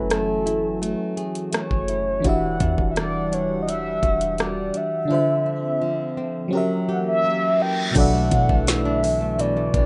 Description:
contemporary R&B; 84 BPM; 4/4; straight; A4 = 435 Hz
mellow horn-like synth lead; melody; 0.0-9.9 s; A4 to G5; -26 LUFS; equal; chorus, tape echo
FM electric piano; accompaniment; 0.0-9.9 s; B2 to G#5; -28 LUFS; equal; chorus
hollow soft pad; sustained chords; 0.0-9.9 s; D3 to F#5; -34 LUFS; equal; chorus
flamenco guitar; arpeggios; 0.0-9.9 s; B2 to A4; -31 LUFS; equal
clean 808-style bass; bass; 0.0-9.9 s; E1 to B2; -30 LUFS; equal
smooth R&B drum kit; drums; 0.1-9.9 s; crash cymbal, hi-hat, kick drum, rim click, snare drum; -26 LUFS; equal
reverse cymbal; sound effects; 7.4-8.0 s; -33 LUFS; equal
little or no reverb; rough home demo mix, nothing above 10.6 kHz; -22 LUFS; mono
0.0-8.0 A section; 8.0-9.9 B section
reverse cymbal 7.4-8.0
0.0 F#m9; 2.2 Em9; 5.1 Dm9; 6.5 F#7b9; 8.0 Bm7
0.10 0.82 1.53 | 2.25 2.96 3.67 4.39 | 5.10 5.82 6.53 7.25 | 7.96 8.67 9.39

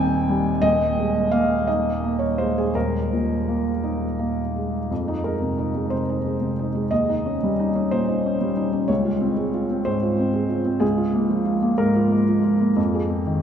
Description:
neoclassical minimalist piano; 54-63 BPM (dotted quarters); 6/8; rubato; A4 = 441 Hz
felt-muted upright piano; solo; 0.0-13.4 s; Eb1 to Ab5; -20 LUFS; equal
wet cathedral reverb, RT60 5.0 s; recorded in a church or concert hall; -20 LUFS; side -8 dB against mid
0.0-4.9 A section; 4.9-13.4 B section
0.0 Cm/Eb; 0.6 Ebsus4; 4.9 Fm7; 6.9 Eb7; 8.9 Dbmaj7; 10.8 Bbm7/Db; 12.8 Fm7
| 0.63 1.67 | 2.75 3.83 | 4.91 5.92 | 6.91 7.92 | 8.90 9.87 | 10.83 11.80 | 12.78

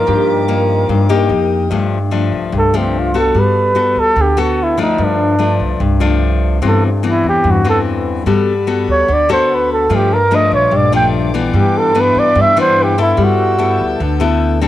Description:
bossa nova; 146 BPM; 4/4; straight; G major; A4 = 444 Hz
breathy flugelhorn; melody; 0.0-14.0 s; C4 to G5; -14 LUFS; right 2 dB; cassette tape
nylon-string guitar; accompaniment; 0.0-14.7 s; G2 to A4; -15 LUFS; left 4 dB; cassette tape
dark chamber string section; sustained chords; 0.0-1.7, 8.3-14.7 s; A4 to G6; -30 LUFS; right 1 dB; cassette tape
upright bass; bass; 0.0-14.7 s; Bb1 to G2; -18 LUFS; right 2 dB
mandolin; second line; 0.1-0.8 s; G4; -22 LUFS; right 11 dB; cassette tape
light reverb, small room ambience; home recording on cassette; -11 LUFS; side -13 dB against mid
0.0-1.7 A section; 1.7-14.7 B section
flugelhorn solo 1.7-14.7
0.0 Ebmaj9/G; 1.3 F9sus4; 1.7 F69; 3.3 Gmaj9; 5.0 F69; 6.6 Am9 (rootless); 8.3 Gmaj9; 9.9 Gm13; 11.5 Cmaj9/G; 13.2 G69
| 0.07 0.48 0.89 1.30 | 1.71 2.12 2.52 2.93 | 3.34 3.75 4.16 4.57 | 4.98 5.39 5.80 6.21 | 6.62 7.03 7.44 7.85 | 8.26 8.67 9.08 9.49 | 9.90 10.31 10.72 11.13 | 11.54 11.95 12.36 12.77 | 13.18 13.59 14.00 14.41

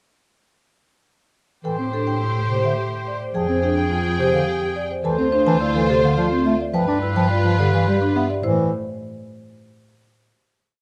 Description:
classical, minimalist pattern music; 106 BPM; 3/4; straight; A minor; A4 = 440 Hz
marimba with medium mallets; melody; 1.6-8.7 s; G4 to A5; -29 LUFS; equal
warm oboe; second line; 1.6-8.3 s; Ab4 to C5; -31 LUFS; equal
mellow bass clarinet; accompaniment; 1.6-8.7 s; C3 to D4; -25 LUFS; equal
rich studio violin section; sustained chords; 1.6-8.3 s; F4 to G5; -33 LUFS; equal
vibraphone with medium mallets; arpeggios; 1.6-8.7 s; C4 to D5; -26 LUFS; equal
rich studio double bass section; bass; 1.6-8.7 s; D2 to A2; -27 LUFS; equal
moderate large studio reverb, RT60 1.4 s; close, detailed microphones, lossy compression artefacts; -20 LUFS; mono
1.6-8.4 A section; 8.4-10.1 final chord
1.6 Am7; 3.3 Fmadd9; 5.0 Dm7; 6.7 G7; 8.4 A5
| 1.65 2.21 2.78 | 3.34 3.91 4.47 | 5.04 5.61 6.17 | 6.74 7.30 7.87 | 8.44

